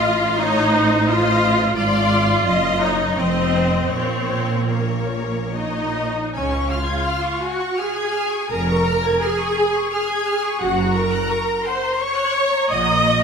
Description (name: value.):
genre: classical, slow romantic movement for string orchestra.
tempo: 69-88 BPM.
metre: 3/4.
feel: rubato.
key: Bb minor, Db major from 6.3 s.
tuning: A4 = 439 Hz.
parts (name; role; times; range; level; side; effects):
clear studio violin section; melody; 0.0-13.2 s; Db5 to Ab6; -27 LUFS; left 7 dB; none.
clear studio violin section; second line; 0.0-13.2 s; Bb4 to Eb6; -27 LUFS; left 3 dB; none.
clear studio viola section; accompaniment; 0.0-13.2 s; Bb3 to Eb5; -20 LUFS; equal; none.
rich studio cello section; bass; 0.0-13.2 s; F2 to Db3; -24 LUFS; right 1 dB; none.
rich studio double bass section; bass; 0.0-13.2 s; F1 to Db2; -26 LUFS; right 3 dB; none.
room: moderate concert hall reverb, RT60 2.2 s.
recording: none.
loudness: -17 LUFS.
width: side -6 dB against mid.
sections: 0.0-6.3 A section; 6.3-13.2 B section.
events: none.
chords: 0.0 F7/A; 1.8 Ddim/Ab; 2.5 Ebm/Gb; 3.2 F5; 3.9 Bbm; 6.3 Db; 8.5 Db/F; 10.6 Gb; 12.7 Gb/Bb.